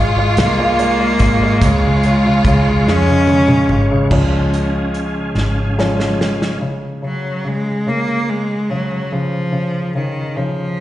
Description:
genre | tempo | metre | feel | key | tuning
six-eight pop ballad | 48 BPM (dotted quarters) | 6/8 | straight | Db major | A4 = 440 Hz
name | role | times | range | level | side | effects
warm studio violin section | second line | 0.0-3.7 s | F4 | -20 LUFS | equal | digital delay
warm grand piano | accompaniment | 0.0-10.8 s | Db3 to F4 | -20 LUFS | left 1 dB | none
tonewheel organ | sustained chords | 0.0-6.6 s | Db3 to Db6 | -26 LUFS | right 1 dB | chorus vibrato, fast rotary speaker
vintage muted fingered electric bass | bass | 0.0-6.6 s | Ab1 to F2 | -18 LUFS | equal | none
bright cello | melody | 0.4-10.8 s | Eb3 to Db4 | -17 LUFS | equal | slapback echo
loose indie drum kit | drums | 0.4-6.6 s | crash cymbal, hi-hat, kick drum, snare drum, toms | -20 LUFS | equal | none
room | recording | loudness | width
studio ambience | live gig heard through the venue's PA, recital hall reverb, nothing above 10.4 kHz | -13 LUFS | side -14 dB against mid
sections
0.0-4.1 A section; 4.1-6.6 B section; 6.6-10.8 C section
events
drum fill 2.9-4.1, 5.4-6.6; grand piano solo 4.1-6.6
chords
0.0 Db/Ab; 1.6 Db; 6.6 N.C.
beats
0.37 | 1.62 2.87 | 4.11 5.36 | 6.61 7.85 | 9.10 10.35

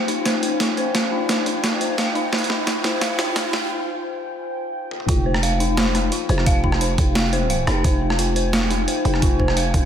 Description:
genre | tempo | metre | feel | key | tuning
half-time drum and bass | 174 BPM | 4/4 | half-time | unclear | A4 = 438 Hz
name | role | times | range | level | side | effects
deep dark ambient pad | sustained chords | 0.0-9.9 s | F4 to Ab5 | -28 LUFS | left 1 dB | chorus, built-in reverb, sidechain pumping
dark detuned synth bell | arpeggios | 0.0-9.9 s | Eb4 to F5 | -25 LUFS | left 2 dB | chorus, phaser, vintage 12-bit sampler grit, tape echo
riser | sound effects | 0.0-3.7 s | none | -29 LUFS | right 1 dB | none
boom bap sampler-style drum kit | drums | 0.1-9.8 s | hi-hat, rim click, snare drum, toms | -22 LUFS | equal | none
electronic kick drum | drums | 0.3-9.8 s | none | -20 LUFS | equal | high-pass filter on kick
growling 808-style bass | bass | 5.1-9.9 s | Eb1 to F1 | -21 LUFS | right 1 dB | none
room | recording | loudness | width
light reverb | high-pass filter | -18 LUFS | side -9 dB against mid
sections
0.0-5.1 A section; 5.1-9.9 B section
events
build-up 0.0-5.1; drum fill 0.0-3.7, 4.9; riser 0.0-3.7; filter sweep 0.0-5.1; break 3.7-5.1; drop 5.1-9.9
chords
0.0 Fmadd9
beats
0.26 0.60 | 0.95 1.29 1.64 1.98 | 2.33 2.67 3.02 3.36 | 3.71 4.05 4.40 4.74 | 5.08 5.43 5.78 6.12 | 6.46 6.81 7.15 7.50 | 7.84 8.19 8.53 8.88 | 9.22 9.57

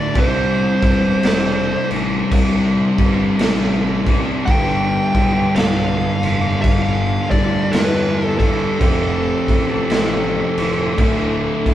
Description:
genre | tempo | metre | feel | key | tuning
stoner and doom metal | 56 BPM | 4/4 | swing 62% on 8ths | unclear | A4 = 440 Hz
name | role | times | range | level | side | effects
fuzz lead guitar | melody | 0.0-11.7 s | A4 to G5 | -22 LUFS | equal | distortion
percussive tonewheel organ | sustained chords | 0.0-11.7 s | C3 to A4 | -31 LUFS | right 2 dB | overdrive
thick fuzz guitar | riff | 0.0-11.7 s | D2 to C4 | -21 LUFS | left 5 dB | distortion
thick fuzz guitar | riff | 0.0-11.7 s | D2 to C4 | -22 LUFS | right 5 dB | distortion
raw garage drum kit | drums | 0.1-11.7 s | crash cymbal, kick drum, snare drum | -19 LUFS | equal | none
fuzz fingered electric bass | bass | 0.2-11.7 s | D1 to E2 | -26 LUFS | equal | overdrive
room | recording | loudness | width
light reverb | band playing live in one room | -15 LUFS | side -12 dB against mid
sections
0.0-11.7 A section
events
none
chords
0.2 C; 4.5 G; 8.8 F; 11.0 D5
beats
| 0.16 1.24 2.32 3.40 | 4.47 5.55 6.64 7.72 | 8.81 9.89 10.98

